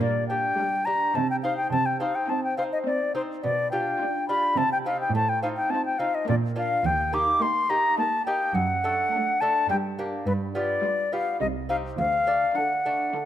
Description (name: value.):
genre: classical, baroque-style concerto movement with solo episodes.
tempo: 105 BPM.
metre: 3/4.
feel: straight.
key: G minor.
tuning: A4 = 440 Hz.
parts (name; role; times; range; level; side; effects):
concert flute; melody; 0.0-13.3 s; B4 to D6; -24 LUFS; left 2 dB; none.
lute; accompaniment; 0.0-13.3 s; D2 to D5; -32 LUFS; right 1 dB; none.
warm chamber cello section; bass; 0.0-12.4 s; C2 to C3; -29 LUFS; right 4 dB; none.
rich chamber violin section; melody; 0.6-13.3 s; F4 to D5; -48 LUFS; left 5 dB; none.
dark studio violin section; second line; 0.6-13.3 s; D4 to F4; -42 LUFS; left 4 dB; none.
warm studio viola section; accompaniment; 0.6-13.3 s; D3 to D4; -35 LUFS; right 2 dB; none.
room: moderate scoring stage reverb, RT60 2.1 s.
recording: close, detailed microphones.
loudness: -22 LUFS.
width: side -11 dB against mid.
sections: 0.0-13.3 A section.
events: none.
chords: 0.0 Gm/Bb; 1.2 Cm; 3.4 G7/B; 4.6 Cm; 5.1 F7/A; 6.3 Bb; 6.9 Eb; 8.6 D/F#; 9.7 Gm; 10.3 G7; 11.4 Cm; 12.0 D.